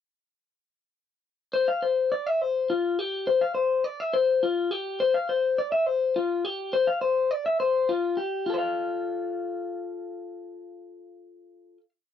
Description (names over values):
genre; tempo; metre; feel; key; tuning
rock; 69 BPM (dotted quarters); 6/8; straight; F major; A4 = 437 Hz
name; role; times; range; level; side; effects
electric guitar through a small old amp; solo; 1.5-11.9 s; F4 to F5; -24 LUFS; left 4 dB; none
room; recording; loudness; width
light reverb; rough home demo mix; -23 LUFS; side -9 dB against mid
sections
1.5-8.5 A section; 8.5-11.9 final chord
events
none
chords
1.5 Fsus2; 8.5 F